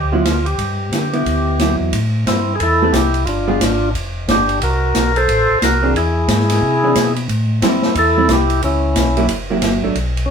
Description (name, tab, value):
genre	soul jazz organ trio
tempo	179 BPM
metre	4/4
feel	swing 62% on 8ths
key	unclear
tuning	A4 = 440 Hz
part	percussive tonewheel organ	melody	0.0-10.3 s	C4 to C5	-17 LUFS	equal	slow rotary speaker
part	mellow tonewheel organ	bass	0.0-10.3 s	F1 to D3	-19 LUFS	equal	chorus vibrato, slow rotary speaker
part	vintage hollow-body jazz guitar	accompaniment	0.1-3.6, 5.8-10.0 s	E3 to B4	-19 LUFS	right 2 dB	none
part	open jazz drum kit	drums	0.3-10.2 s	hi-hat, kick drum, ride cymbal, snare drum	-20 LUFS	equal	none
room	moderate studio ambience, RT60 0.5 s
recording	band playing live in one room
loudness	-14 LUFS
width	side -6 dB against mid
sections	0.0-1.9 A section; 1.9-10.3 B section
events	none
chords	0.0 G6; 1.9 Am7; 3.3 G7(no3); 4.6 Cmaj7(b5, no3); 6.0 E(b13); 7.3 Am7; 8.6 C#m7b5; 9.3 F#7b9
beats	0.25 | 0.58 0.92 1.26 1.59 | 1.93 2.26 2.60 2.93 | 3.27 3.60 3.94 4.28 | 4.61 4.95 5.28 5.62 | 5.95 6.29 6.62 6.96 | 7.29 7.62 7.96 8.29 | 8.63 8.96 9.30 9.63 | 9.97 10.30